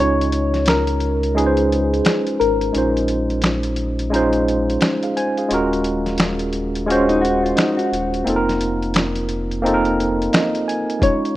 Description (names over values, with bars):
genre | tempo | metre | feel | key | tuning
lo-fi hip hop | 87 BPM | 4/4 | swing 62% on 16ths | unclear | A4 = 440 Hz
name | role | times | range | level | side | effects
soft struck synth lead | melody | 0.0-3.1, 11.0-11.4 s | Ab4 to Db5 | -21 LUFS | left 2 dB | chorus, phaser, low-pass filter
tine electric piano | accompaniment | 0.0-11.4 s | Ab3 to Ab5 | -19 LUFS | right 1 dB | medium stereo tremolo, cassette tape, low-pass filter
sub bass with octave | bass | 0.0-10.3 s | Eb1 to Db2 | -24 LUFS | equal | none
lo-fi sampler-style drum kit | drums | 0.2-11.4 s | finger snaps, hi-hat, kick drum, snare drum | -21 LUFS | equal | overdrive
mellow electric guitar | second line | 6.9-8.2 s | Db4 to Gb4 | -22 LUFS | left 2 dB | spring reverb, low-pass filter, analog delay
room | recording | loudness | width
digital ambience | rough home demo mix | -16 LUFS | side -15 dB against mid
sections
0.0-11.4 A section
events
break 0.0-11.0; tine electric piano fill 10.0-11.0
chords
0.0 Dbmaj7; 2.7 Bbm11; 5.5 Ebm11; 8.3 F7sus4